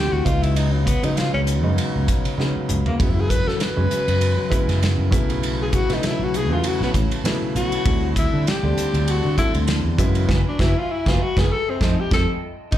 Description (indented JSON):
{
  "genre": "electric jazz fusion",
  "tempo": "99 BPM",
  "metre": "4/4",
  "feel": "swing 55% on 16ths",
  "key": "F# minor",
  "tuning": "A4 = 440 Hz",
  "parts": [
    { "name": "breathy tenor saxophone", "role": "melody", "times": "0.0-12.8 s", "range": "F#3 to B4", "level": "-24 LUFS", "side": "left 3 dB", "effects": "slapback echo, plate reverb" },
    { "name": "dark grand piano", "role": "accompaniment", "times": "0.0-12.8 s", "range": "C#3 to F4", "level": "-26 LUFS", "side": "right 2 dB", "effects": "plate reverb, slapback echo" },
    { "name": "warbly tape-like pad", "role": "sustained chords", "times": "0.0-12.7 s", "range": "D#4 to C6", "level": "-36 LUFS", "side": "equal", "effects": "chorus, built-in reverb, plate reverb" },
    { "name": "sustaining fretless electric bass", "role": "bass", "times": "0.0-12.8 s", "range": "F#1 to F#3", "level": "-21 LUFS", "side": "equal", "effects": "lush chorus" },
    { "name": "modern studio drum kit", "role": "drums", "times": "0.3-12.8 s", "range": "hi-hat, kick drum, ride cymbal, snare drum, toms", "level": "-24 LUFS", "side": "equal", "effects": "none" }
  ],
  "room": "light reverb",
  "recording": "live gig heard through the venue's PA, club reverb",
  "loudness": "-18 LUFS",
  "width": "side -12 dB against mid",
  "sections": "0.0-12.7 A section",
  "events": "tenor saxophone solo 0.0-12.7; drum fill 2.4-3.0, 12.4-12.7; band accent 10.3-12.7",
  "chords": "0.3 C#9sus4; 3.0 F#9sus4; 5.1 B9sus4; 7.9 D9sus4; 10.0 F#9sus4; 11.5 F9"
}